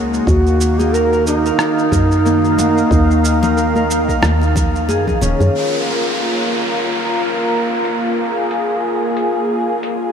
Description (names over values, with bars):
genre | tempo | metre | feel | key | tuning
organic downtempo | 91 BPM | 4/4 | swing 57% on 16ths | unclear | A4 = 439 Hz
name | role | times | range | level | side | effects
warm analog pad | sustained chords | 0.0-10.1 s | Db3 to F5 | -19 LUFS | equal | chorus, sidechain pumping, shimmer reverb
Celtic harp | arpeggios | 0.0-8.1 s | Bb3 to Bb4 | -21 LUFS | left 2 dB | ping-pong delay, shimmer reverb
woody FM bass | bass | 0.0-5.5 s | Eb1 to Gb2 | -17 LUFS | equal | none
dusty soul sampler-style drum kit | drums | 0.1-10.0 s | cabasa, hi-hat, rim click | -26 LUFS | right 1 dB | low-pass filter on perc, low-pass filter on snare, low-pass filter on hats, low-pass filter on room
mellow low Native American-style wooden flute | melody | 0.3-4.9 s | Eb4 to Bb4 | -20 LUFS | right 2 dB | ping-pong delay, shimmer reverb
electronic kick drum | drums | 0.3-5.2 s | none | -20 LUFS | equal | none
congas | percussion | 0.8-5.5 s | none | -27 LUFS | left 2 dB | none
downlifter | sound effects | 5.5-10.1 s | none | -23 LUFS | equal | none
room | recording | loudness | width
wet huge ambient reverb, RT60 8.6 s | dreamy mix soaked in reverb | -13 LUFS | side -7 dB against mid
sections
0.0-5.5 A section; 5.5-10.1 B section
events
none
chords
0.3 Ebmadd9; 5.5 Bb5